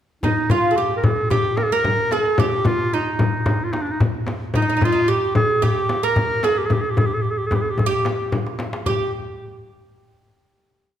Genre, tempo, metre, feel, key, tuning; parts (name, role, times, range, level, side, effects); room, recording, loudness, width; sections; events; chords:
Arabic maqam ensemble; 111 BPM; 4/4; straight; G maqam bayati; A4 = 440 Hz
clear clarinet; melody; 0.2-9.1 s; D4 to Bb4; -21 LUFS; equal
oud; second line; 0.2-9.1 s; Eb4 to Bb4; -25 LUFS; right 4 dB
darbuka; percussion; 0.2-9.1 s; -24 LUFS; left 2 dB
frame drum; percussion; 0.2-9.1 s; -24 LUFS; left 2 dB
wet recital hall reverb, RT60 1.6 s; recorded in a church or concert hall; -17 LUFS; side -10 dB against mid
0.2-8.9 A section; 8.9-11.0 final note
drum fill 8.3-8.9